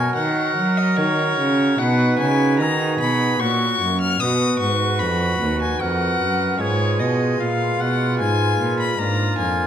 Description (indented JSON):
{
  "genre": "classical, baroque-style sonata movement with continuo",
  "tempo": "75 BPM",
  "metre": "3/4",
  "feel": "straight",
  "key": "unclear",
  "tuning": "A4 = 440 Hz",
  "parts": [
    { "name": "rich violin", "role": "melody", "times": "0.0-9.7 s", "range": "C#5 to E#6", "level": "-23 LUFS", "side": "left 6 dB", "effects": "none" },
    { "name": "warm oboe", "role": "second line", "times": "0.0-9.7 s", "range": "F4 to B4", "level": "-25 LUFS", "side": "right 6 dB", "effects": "none" },
    { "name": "pipe organ, cornet", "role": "accompaniment", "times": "0.0-9.7 s", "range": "D#2 to C#5", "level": "-24 LUFS", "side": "equal", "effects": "none" },
    { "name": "rich cello", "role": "bass", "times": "0.0-9.7 s", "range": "D#2 to F#3", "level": "-22 LUFS", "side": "right 1 dB", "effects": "none" }
  ],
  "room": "wet recital hall reverb, RT60 1.3 s",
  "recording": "none",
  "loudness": "-17 LUFS",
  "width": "side -9 dB against mid",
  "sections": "0.0-9.7 A section",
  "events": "none",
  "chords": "0.0 F#; 3.4 F#/A#; 4.2 B; 6.6 Fdim/Ab; 9.0 Bb7"
}